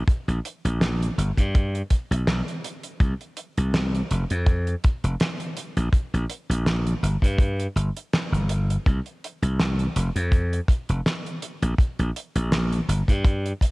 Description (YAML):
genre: vaporwave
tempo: 82 BPM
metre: 4/4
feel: swing 55% on 16ths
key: unclear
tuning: A4 = 440 Hz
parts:
  - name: slap bass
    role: bass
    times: 0.0-13.5 s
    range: F1 to G2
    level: -23 LUFS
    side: equal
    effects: tube saturation
  - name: damped 70s drum kit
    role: drums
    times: 0.1-13.7 s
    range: hi-hat, snare drum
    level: -27 LUFS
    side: right 1 dB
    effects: gated reverb
  - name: kick drum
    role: drums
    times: 0.1-13.7 s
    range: none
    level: -19 LUFS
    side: equal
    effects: none
room: little or no reverb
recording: none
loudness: -22 LUFS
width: side -24 dB against mid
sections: 0.0-13.7 A section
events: none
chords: none